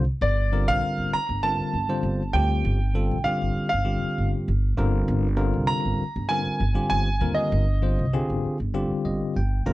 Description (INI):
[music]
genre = jazz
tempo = 98 BPM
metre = 4/4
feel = straight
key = G minor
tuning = A4 = 441 Hz
[part]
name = bell-like tine electric piano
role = accompaniment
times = 0.0-9.7 s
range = D3 to Bb5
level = -27 LUFS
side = left 2 dB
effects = medium stereo tremolo
[part]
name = upright bass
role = bass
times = 0.0-9.7 s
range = G1 to Eb2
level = -24 LUFS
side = equal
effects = none
[part]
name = bright grand piano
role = melody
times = 0.2-8.2 s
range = D5 to Bb5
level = -26 LUFS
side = right 2 dB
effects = slapback echo
[sound]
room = little or no reverb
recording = dry, close 1970s-style studio recording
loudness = -22 LUFS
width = side -17 dB against mid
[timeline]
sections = 0.2-9.7 A section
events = tine electric piano fill 8.7-9.7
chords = 0.2 Gm9; 4.8 Abmaj9/G